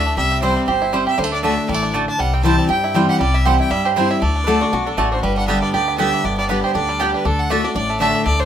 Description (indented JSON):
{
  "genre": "bluegrass",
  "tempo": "237 BPM",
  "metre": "4/4",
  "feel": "swing 56% on 8ths",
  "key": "unclear",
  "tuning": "A4 = 438 Hz",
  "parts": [
    { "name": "clear fiddle", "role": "melody", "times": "0.0-8.5 s", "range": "A4 to A5", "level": "-22 LUFS", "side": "left 2 dB", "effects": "none" },
    { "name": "picked steel-string acoustic guitar", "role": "accompaniment", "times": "0.0-8.5 s", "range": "G2 to G4", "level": "-21 LUFS", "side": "left 2 dB", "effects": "none" },
    { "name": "bluegrass banjo", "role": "arpeggios", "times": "0.0-8.5 s", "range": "G3 to G4", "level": "-21 LUFS", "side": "right 4 dB", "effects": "none" },
    { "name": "mandolin", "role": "stabs", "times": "0.0-8.1 s", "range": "A3 to A5", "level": "-23 LUFS", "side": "right 4 dB", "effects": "none" },
    { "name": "upright bass", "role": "bass", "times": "0.0-8.5 s", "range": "G1 to G2", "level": "-22 LUFS", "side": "left 1 dB", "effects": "none" },
    { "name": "lap resonator guitar", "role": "second line", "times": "4.4-5.2 s", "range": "F#4 to B4", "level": "-24 LUFS", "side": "left 2 dB", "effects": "none" }
  ],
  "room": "moderate studio reverb, RT60 0.6 s",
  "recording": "minimal, uncompressed stereo recording",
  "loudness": "-15 LUFS",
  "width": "side -9 dB against mid",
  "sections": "0.0-5.2 A section; 5.2-8.5 B section",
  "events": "none",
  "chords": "0.2 C; 1.2 D; 2.2 C; 4.2 D; 5.2 G; 7.2 D"
}